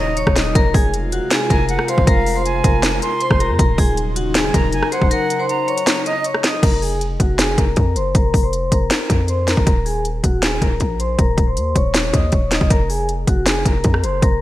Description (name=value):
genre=hip hop, trap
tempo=158 BPM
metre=4/4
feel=half-time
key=F phrygian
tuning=A4 = 440 Hz
part: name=vibraphone with hard mallets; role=melody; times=0.0-14.4 s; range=Gb4 to Eb6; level=-21 LUFS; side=left 2 dB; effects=low-pass filter
part: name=silver concert flute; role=second line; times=0.0-6.2 s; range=Eb5 to C6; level=-25 LUFS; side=right 4 dB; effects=digital delay
part: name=airy breathy pad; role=sustained chords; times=0.0-6.6 s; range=C3 to F4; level=-26 LUFS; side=left 1 dB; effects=chorus
part: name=hard-hitting 808-style bass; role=bass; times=0.0-14.4 s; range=Eb1 to F2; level=-20 LUFS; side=equal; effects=none
part: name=trap drum kit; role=drums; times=0.2-14.3 s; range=crash cymbal, hi-hat, kick drum, rim click, snare drum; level=-17 LUFS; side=equal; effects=gated reverb
room=light reverb, digital ambience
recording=bright 1980s-style digital production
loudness=-15 LUFS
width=side -15 dB against mid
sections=0.0-6.6 A section; 6.6-14.4 B section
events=kick muted 5.1-6.6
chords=0.0 Ebm7; 0.6 Fm; 3.6 Ebm7; 6.6 F5; 9.7 Eb7(no3); 12.7 Fm